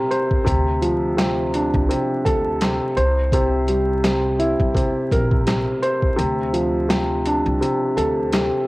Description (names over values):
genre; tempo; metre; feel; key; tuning
hip hop, boom-bap hip-hop; 84 BPM; 4/4; swing 56% on 16ths; D minor; A4 = 442 Hz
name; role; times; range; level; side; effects
dark upright piano; accompaniment; 0.0-8.7 s; C3 to C5; -19 LUFS; equal; cassette tape, high-pass filter, low-pass filter
boom bap sampler-style drum kit; drums; 0.1-8.5 s; handclaps, hi-hat, kick drum, snare drum; -22 LUFS; equal; cassette tape
upright bass; bass; 0.5-8.5 s; Bb1 to D2; -24 LUFS; equal; tube saturation
room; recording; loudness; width
moderate spring reverb, RT60 2.5 s; home recording on cassette, vinyl crackle; -17 LUFS; side -20 dB against mid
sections
0.0-8.7 A section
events
kick muted 6.2-8.7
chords
0.5 Dm7; 3.0 C7; 6.2 Dm7